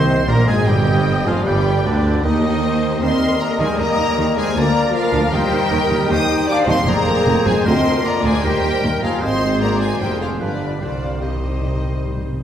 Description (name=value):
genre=classical, dramatic, fast romantic movement for symphony orchestra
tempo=154 BPM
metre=4/4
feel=rubato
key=C minor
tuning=A4 = 441 Hz
part: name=rich studio violin section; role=melody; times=0.0-12.3 s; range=D5 to Eb6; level=-26 LUFS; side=left 3 dB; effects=none
part: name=clear oboe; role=second line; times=0.0-12.2 s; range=Bb4 to C6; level=-28 LUFS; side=equal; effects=none
part: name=mellow flute section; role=second line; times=0.0-12.2 s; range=F4 to G5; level=-26 LUFS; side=left 1 dB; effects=none
part: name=warm clarinet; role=second line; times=0.0-12.2 s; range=D4 to C5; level=-28 LUFS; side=left 1 dB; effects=none
part: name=warm symphonic violin section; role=second line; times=0.0-12.2 s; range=D4 to Eb5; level=-28 LUFS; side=left 1 dB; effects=none
part: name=warm bassoon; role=accompaniment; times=0.0-12.2 s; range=D3 to C4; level=-28 LUFS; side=right 3 dB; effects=none
part: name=dark French horn section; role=sustained chords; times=0.0-12.2 s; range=D3 to Eb4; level=-23 LUFS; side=left 2 dB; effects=none
part: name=rich studio cello section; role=bass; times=0.0-12.3 s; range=D2 to Eb3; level=-23 LUFS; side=right 2 dB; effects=none
part: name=rich symphonic double bass section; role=bass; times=0.0-12.3 s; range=F1 to Eb2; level=-23 LUFS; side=right 1 dB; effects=none
part: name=warm tuba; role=bass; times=0.0-12.2 s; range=F1 to Eb2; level=-26 LUFS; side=right 1 dB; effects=none
part: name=timpani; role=percussion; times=0.0-0.4, 10.8-12.4 s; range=C3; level=-27 LUFS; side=left 1 dB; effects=none
part: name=warm symphonic viola section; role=accompaniment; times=0.7-12.2 s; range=G4 to Eb5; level=-28 LUFS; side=equal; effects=none
room=wet recital hall reverb, RT60 1.7 s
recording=heard from further back in the room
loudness=-15 LUFS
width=side -9 dB against mid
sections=0.0-12.4 A section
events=timpani fill 10.8-12.4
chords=0.0 Cm; 1.5 G; 2.2 Cm/Eb; 3.0 Eb; 4.6 Bb/D; 5.3 Eb; 6.1 Cm/Eb; 6.9 Fm7; 7.7 Bb/D; 8.4 Eb; 9.2 Ab; 10.0 Dm7b5/F; 10.4 G7; 10.8 Cm